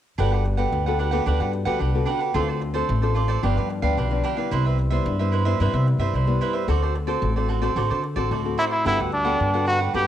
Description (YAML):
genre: samba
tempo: 111 BPM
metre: 4/4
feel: straight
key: G major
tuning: A4 = 435 Hz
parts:
  - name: cavaquinho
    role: accompaniment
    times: 0.2-10.1 s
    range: D4 to F#5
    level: -26 LUFS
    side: right 8 dB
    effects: cassette tape
  - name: nylon-string guitar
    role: accompaniment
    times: 0.2-10.1 s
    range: G2 to A4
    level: -27 LUFS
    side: left 9 dB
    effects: cassette tape
  - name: upright bass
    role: bass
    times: 0.2-10.1 s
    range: G1 to D3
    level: -23 LUFS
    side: equal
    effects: none
  - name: clear trumpet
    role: melody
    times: 8.6-10.1 s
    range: D4 to G4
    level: -21 LUFS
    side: equal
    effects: cassette tape
room: moderate spring reverb, RT60 1.6 s, small room reverb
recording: home recording on cassette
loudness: -20 LUFS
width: side -11 dB against mid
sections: 0.2-8.9 A section; 8.9-10.1 B section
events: none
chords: 0.2 Gmaj9; 2.4 Dm7; 3.4 G7; 4.5 Cmaj7; 6.7 D7; 8.9 Gmaj9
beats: | 0.19 0.73 1.27 1.81 | 2.35 2.90 3.44 3.98 | 4.52 5.06 5.60 6.14 | 6.69 7.23 7.77 8.31 | 8.86 9.40 9.94